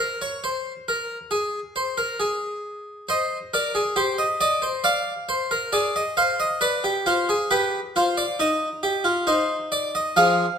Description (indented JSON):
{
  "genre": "classical, baroque-style 3-part fugue for harpsichord",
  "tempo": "68 BPM",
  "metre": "4/4",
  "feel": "straight",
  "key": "unclear",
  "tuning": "A4 = 440 Hz",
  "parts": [
    { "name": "harpsichord", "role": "solo", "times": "0.0-10.6 s", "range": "F3 to F5", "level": "-21 LUFS", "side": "equal", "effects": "none" }
  ],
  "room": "moderate recital hall reverb, RT60 1.3 s",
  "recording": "none",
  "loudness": "-21 LUFS",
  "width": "side -7 dB against mid",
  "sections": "0.0-10.6 A section",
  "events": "none",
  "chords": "0.0 N.C.; 3.1 Cm; 4.9 Dm7b5; 6.6 G7; 8.4 Cm/Eb"
}